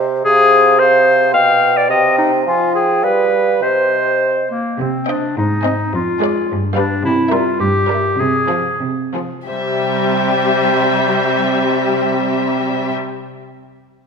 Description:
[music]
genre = quick classical-period movement for symphony orchestra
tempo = 88-110 BPM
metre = 2/4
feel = rubato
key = unclear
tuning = A4 = 440 Hz
[part]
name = mellow hollow concert flute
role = second line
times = 0.0-4.5 s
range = Eb5 to Ab5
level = -19 LUFS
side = equal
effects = none
[part]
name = warm bassoon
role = accompaniment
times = 0.0-4.5 s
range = B2 to G3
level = -18 LUFS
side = right 4 dB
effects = none
[part]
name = clear clarinet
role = second line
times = 0.2-12.9 s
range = Bb3 to F5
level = -16 LUFS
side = left 2 dB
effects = none
[part]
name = clear chamber cello section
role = bass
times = 4.8-12.9 s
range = F2 to C3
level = -20 LUFS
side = right 3 dB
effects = none
[part]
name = rich chamber violin section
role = melody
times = 5.1-12.9 s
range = E5 to Ab5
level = -25 LUFS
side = left 3 dB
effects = none
[part]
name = rich chamber violin section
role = second line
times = 5.1-12.9 s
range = G4 to Eb5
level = -22 LUFS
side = left 5 dB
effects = none
[part]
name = clear symphonic viola section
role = accompaniment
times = 5.1-12.9 s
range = F3 to C4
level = -22 LUFS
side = equal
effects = none
[sound]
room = wet scoring stage reverb, RT60 1.9 s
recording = minimal, uncompressed stereo recording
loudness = -13 LUFS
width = side -6 dB against mid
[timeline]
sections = 0.0-4.8 A section; 4.8-9.5 B section; 9.5-12.2 C section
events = slowing down 6.5-9.5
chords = 0.3 Fm/C; 1.4 G7/B; 1.9 Cm; 2.5 Fmadd9; 3.0 G7; 3.6 Cm; 5.4 Ab; 5.9 Ddim/F; 6.5 G7; 7.0 C7; 8.2 Fm/C; 9.5 C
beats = | 0.26 0.80 | 1.35 1.91 | 2.47 3.04 | 3.63 4.22 | 4.80 5.37 | 5.93 6.49 | 7.04 7.60 | 8.19 8.81 | 9.48 10.14 | 10.81 11.48

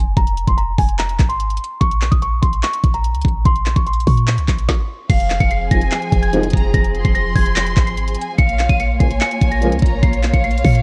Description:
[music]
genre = hip hop, trap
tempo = 146 BPM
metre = 4/4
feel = half-time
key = F minor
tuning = A4 = 440 Hz
[part]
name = celesta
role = melody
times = 0.0-10.8 s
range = Ab5 to Eb7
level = -25 LUFS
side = equal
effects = tape echo
[part]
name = clean 808-style bass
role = bass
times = 0.0-10.8 s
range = F1 to Bb2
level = -20 LUFS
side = equal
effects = none
[part]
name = trap drum kit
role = drums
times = 0.0-10.8 s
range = crash cymbal, handclaps, hi-hat, kick drum, snare drum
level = -20 LUFS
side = equal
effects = vintage 12-bit sampler grit
[part]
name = warm studio violin section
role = second line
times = 5.1-10.8 s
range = F5 to C6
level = -27 LUFS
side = equal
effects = tape echo
[part]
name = warm studio string section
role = sustained chords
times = 5.1-10.8 s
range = F3 to Db5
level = -28 LUFS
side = equal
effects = none
[part]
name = mellow brass ensemble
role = stabs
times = 5.7-6.5, 9.0-9.7 s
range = C2 to F3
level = -24 LUFS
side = equal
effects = tape echo
[sound]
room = small room reverb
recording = worn, warbling old tape, cassette tape, warbly pitch drift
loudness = -17 LUFS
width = mono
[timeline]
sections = 0.0-5.1 A section; 5.1-10.8 B section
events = stop 4.7-5.1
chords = 0.0 Fm; 1.8 Bbm; 5.1 Fm; 8.4 Bbm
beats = | 0.17 0.58 0.99 1.40 | 1.81 2.22 2.63 3.04 | 3.45 3.87 4.28 4.69 | 5.10 5.51 5.92 6.33 | 6.74 7.15 7.56 7.97 | 8.38 8.80 9.21 9.62 | 10.03 10.44

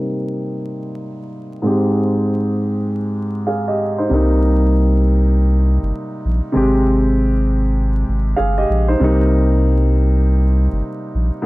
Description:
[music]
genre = hip hop, boom-bap hip-hop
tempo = 98 BPM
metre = 4/4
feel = swing 62% on 16ths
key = C minor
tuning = A4 = 440 Hz
[part]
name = dark baby grand piano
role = accompaniment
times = 0.0-11.5 s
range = Ab2 to F5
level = -18 LUFS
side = equal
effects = cassette tape, high-pass filter, low-pass filter
[part]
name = saturated sub bass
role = bass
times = 4.1-11.3 s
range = G1 to C2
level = -15 LUFS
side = equal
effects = none
[sound]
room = little or no reverb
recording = dark, warm production, vinyl crackle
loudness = -14 LUFS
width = side -20 dB against mid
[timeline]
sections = 0.0-9.0 A section; 9.0-11.5 B section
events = filter sweep on grand piano 0.0-9.0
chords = 0.0 Cm7; 1.7 Abmaj7; 4.1 Cm7; 6.6 Abmaj7; 9.0 Cm7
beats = 0.43 1.04 | 1.65 2.27 2.88 3.49 | 4.10 4.71 5.33 5.94 | 6.55 7.16 7.78 8.39 | 9.00 9.61 10.22 10.84 | 11.45

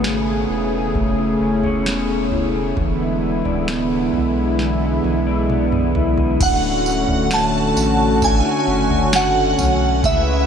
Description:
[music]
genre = dream pop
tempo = 66 BPM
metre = 4/4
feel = straight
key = unclear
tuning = A4 = 440 Hz
[part]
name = warm analog pad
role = sustained chords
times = 0.0-10.5 s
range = C#3 to B4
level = -20 LUFS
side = equal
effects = chorus
[part]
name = electric guitar at the edge of break-up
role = arpeggios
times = 0.0-10.5 s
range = C#3 to D5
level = -23 LUFS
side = left 3 dB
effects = lush chorus, ping-pong delay
[part]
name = warm sub bass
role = bass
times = 0.0-10.5 s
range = D1 to C#2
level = -24 LUFS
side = equal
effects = none
[part]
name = booming analog drum machine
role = drums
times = 0.0-10.3 s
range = crash cymbal, kick drum, snare drum, tambourine, toms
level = -24 LUFS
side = right 1 dB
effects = none
[part]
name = shimmering bell with halo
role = melody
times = 6.4-10.5 s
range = E5 to A5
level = -19 LUFS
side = right 2 dB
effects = ensemble chorus, ping-pong delay
[sound]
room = wet huge ambient reverb, RT60 8.8 s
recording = dreamy mix soaked in reverb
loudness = -16 LUFS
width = side -7 dB against mid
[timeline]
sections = 0.0-6.4 A section; 6.4-10.5 B section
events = drum fill 4.6-6.4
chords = 0.0 Amaj9; 2.8 E7; 6.4 Dmaj7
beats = 0.04 0.95 1.86 | 2.77 3.68 4.59 5.50 | 6.41 7.31 8.22 9.13 | 10.04

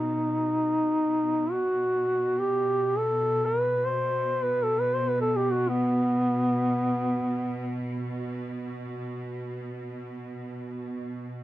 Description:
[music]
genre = caucasian folk, Caucasian lament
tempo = free time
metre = none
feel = none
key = B phrygian dominant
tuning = A4 = 441 Hz
[part]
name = mellow duduk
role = melody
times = 0.0-8.0 s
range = B3 to C5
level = -24 LUFS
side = equal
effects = none
[part]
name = clear symphonic string section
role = drone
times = 0.0-11.4 s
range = B2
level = -33 LUFS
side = right 1 dB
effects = none
[sound]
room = small room reverb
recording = dry, close 1970s-style studio recording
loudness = -24 LUFS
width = side -14 dB against mid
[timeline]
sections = 0.0-11.4 A section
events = none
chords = none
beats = free time

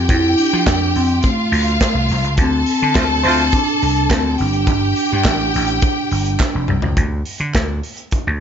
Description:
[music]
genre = disco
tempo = 105 BPM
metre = 4/4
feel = straight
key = unclear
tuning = A4 = 438 Hz
[part]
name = vibraphone with soft mallets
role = melody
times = 0.0-6.7 s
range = A3 to E4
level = -19 LUFS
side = right 1 dB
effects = none
[part]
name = clear studio string section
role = second line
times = 0.0-6.9 s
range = F4 to A5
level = -20 LUFS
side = left 2 dB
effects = none
[part]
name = vintage slap bass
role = bass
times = 0.0-8.4 s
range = F1 to F3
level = -19 LUFS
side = equal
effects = none
[part]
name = modern studio drum kit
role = drums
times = 0.1-8.3 s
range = hi-hat, kick drum, snare drum, toms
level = -20 LUFS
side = equal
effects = none
[part]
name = group handclap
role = percussion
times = 0.7-7.7 s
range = none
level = -28 LUFS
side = right 4 dB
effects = none
[part]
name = clear horn section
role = stabs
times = 2.9-3.4 s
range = A3 to C5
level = -19 LUFS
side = right 2 dB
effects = none
[sound]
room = light reverb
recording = nothing above 7.6 kHz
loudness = -14 LUFS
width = side -8 dB against mid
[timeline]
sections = 0.0-7.0 A section; 7.0-8.4 B section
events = drum fill 6.4-7.0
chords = 0.0 F; 2.4 Dm7; 4.4 Gsus2; 7.0 N.C.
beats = | 0.09 0.66 1.24 1.81 | 2.38 2.96 3.53 4.10 | 4.67 5.25 5.82 6.39 | 6.97 7.55 8.12

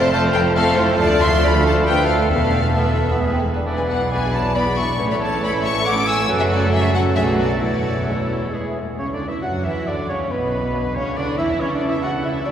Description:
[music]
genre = quick classical-period movement for symphony orchestra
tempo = 137 BPM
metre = 3/4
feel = rubato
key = A major from 3.7 s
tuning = A4 = 439 Hz
[part]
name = warm studio violin section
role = melody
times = 0.0-12.5 s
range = A3 to E6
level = -26 LUFS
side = left 3 dB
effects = none
[part]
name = clear clarinet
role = second line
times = 0.0-12.5 s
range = C#4 to D5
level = -30 LUFS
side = left 1 dB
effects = none
[part]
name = clear oboe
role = second line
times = 0.0-12.5 s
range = G#4 to F#5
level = -29 LUFS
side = right 1 dB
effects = none
[part]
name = dark studio violin section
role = second line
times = 0.0-12.5 s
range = E4 to G#5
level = -27 LUFS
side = left 2 dB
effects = none
[part]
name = clear studio viola section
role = accompaniment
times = 0.0-12.5 s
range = G#3 to C5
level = -27 LUFS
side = right 1 dB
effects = none
[part]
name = mellow bassoon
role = accompaniment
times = 0.0-12.5 s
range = B2 to D4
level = -26 LUFS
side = right 1 dB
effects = none
[part]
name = mellow French horn section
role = sustained chords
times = 0.0-12.5 s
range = E3 to F#4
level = -28 LUFS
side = left 1 dB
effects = none
[part]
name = mellow trumpet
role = stabs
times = 0.0-12.5 s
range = G#4 to F#5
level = -28 LUFS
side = right 1 dB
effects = none
[part]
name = rich studio cello section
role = bass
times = 0.0-12.5 s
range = D2 to F#3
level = -26 LUFS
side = right 1 dB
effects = none
[part]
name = rich studio double bass section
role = bass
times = 0.0-12.5 s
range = E1 to F#2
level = -24 LUFS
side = right 1 dB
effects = none
[part]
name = concert flute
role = second line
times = 0.1-12.5 s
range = B4 to E6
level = -30 LUFS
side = left 1 dB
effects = none
[part]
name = timpani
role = percussion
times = 2.3-2.9 s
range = none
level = barely audible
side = none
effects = none
[sound]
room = wet cathedral reverb, RT60 4.6 s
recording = recorded in a church or concert hall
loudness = -17 LUFS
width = side -9 dB against mid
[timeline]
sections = 0.0-9.0 A section; 9.0-12.5 B section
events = none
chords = 0.0 F; 1.0 Dm; 2.3 Esus4; 3.2 E; 3.7 E7/B; 5.0 A; 6.3 F#m; 7.2 Bm7; 7.6 A/E; 8.5 E; 9.0 Dmaj9/C#; 10.3 E5/B; 11.6 A/C#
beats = 0.12 0.56 | 0.99 1.42 1.86 | 2.30 2.76 3.21 | 3.66 4.11 4.55 | 4.99 5.42 5.86 | 6.29 6.72 7.16 | 7.62 8.08 8.54 | 8.99 9.44 9.88 | 10.31 10.74 11.17 | 11.60 12.03 12.46

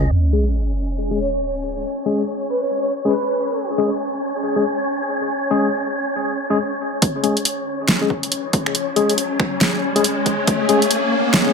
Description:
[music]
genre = deep dubstep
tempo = 139 BPM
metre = 4/4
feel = swing 61% on 16ths, half-time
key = unclear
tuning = A4 = 440 Hz
[part]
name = wind-like tuned noise texture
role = texture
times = 0.0-11.5 s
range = C#4 to D#5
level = -23 LUFS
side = left 2 dB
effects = built-in reverb
[part]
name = sub drop and riser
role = sound effects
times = 0.1-1.8, 8.5-11.5 s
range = none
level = -22 LUFS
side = right 1 dB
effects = none
[part]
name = barky tine electric piano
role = stabs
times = 0.3-11.5 s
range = G#3 to G#4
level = -22 LUFS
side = left 3 dB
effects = auto-pan, low-pass filter, dub echo
[part]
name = breathy flute-like synth lead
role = melody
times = 1.2-3.6 s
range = B4 to C#5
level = -24 LUFS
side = right 1 dB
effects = ensemble chorus, dub echo
[part]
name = deep house drum kit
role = drums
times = 7.0-11.4 s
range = finger snaps, hi-hat, snare drum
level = -19 LUFS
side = right 1 dB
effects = overdrive, low-pass filter on hats, low-pass filter on snare
[part]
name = electronic kick drum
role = drums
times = 7.0-10.6 s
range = none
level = -21 LUFS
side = right 1 dB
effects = overdrive, high-pass filter on kick
[sound]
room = moderate digital room reverb, RT60 1.2 s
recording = low-pass filter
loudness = -17 LUFS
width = side -5 dB against mid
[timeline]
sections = 0.1-7.0 A section; 7.0-11.5 B section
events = impact 0.1-1.8; filter sweep 0.1-7.0; build-up 7.0-11.5; filter sweep on tine electric piano 7.0-11.5; riser 8.5-11.5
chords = 0.1 C#5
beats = | 0.12 0.55 0.98 1.41 | 1.84 2.27 2.71 3.14 | 3.57 4.00 4.43 4.86 | 5.30 5.73 6.16 6.59 | 7.02 7.45 7.89 8.32 | 8.75 9.18 9.61 10.04 | 10.47 10.91 11.34

